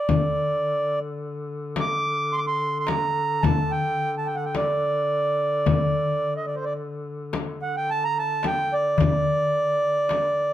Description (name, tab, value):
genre	Arabic maqam ensemble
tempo	108 BPM (eighths)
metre	10/8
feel	straight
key	D maqam hijaz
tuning	A4 = 440 Hz
part	mellow accordion	melody	0.0-10.5 s	C5 to D6	-23 LUFS	right 2 dB	plate reverb
part	mellow duduk	drone	0.1-10.5 s	D3	-32 LUFS	left 3 dB	none
part	darbuka	percussion	0.1-10.4 s	none	-26 LUFS	left 4 dB	none
part	frame drum	percussion	0.1-10.4 s	none	-26 LUFS	left 3 dB	none
room	moderate studio reverb, RT60 0.5 s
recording	none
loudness	-22 LUFS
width	side -12 dB against mid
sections	0.0-10.5 A section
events	none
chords	none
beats	| 0.10 0.65 1.21 1.77 2.32 2.88 3.44 3.99 4.55 5.11 | 5.66 6.22 6.77 7.33 7.89 8.44 9.00 9.55 10.11